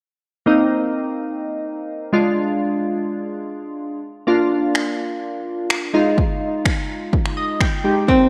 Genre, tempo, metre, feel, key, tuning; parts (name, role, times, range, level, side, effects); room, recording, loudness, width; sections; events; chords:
dance-pop; 126 BPM; 4/4; straight; A4 = 440 Hz
glassy digital keys; accompaniment; 0.5-8.3 s; Ab3 to G5; -22 LUFS; equal; chorus, phaser, sidechain pumping
deep house drum kit; drums; 4.8-8.2 s; finger snaps, kick drum; -23 LUFS; equal; overdrive
archtop guitar, miked and amplified; melody; 8.1-8.3 s; C4; -14 LUFS; equal; slapback echo
wet echo chamber reverb, RT60 2.0 s; -21 LUFS; mono
0.5-8.1 A section
synth keys fill 7.1-8.1
0.5 Cm7; 2.1 Ddim; 4.3 Bb; 5.9 Fm7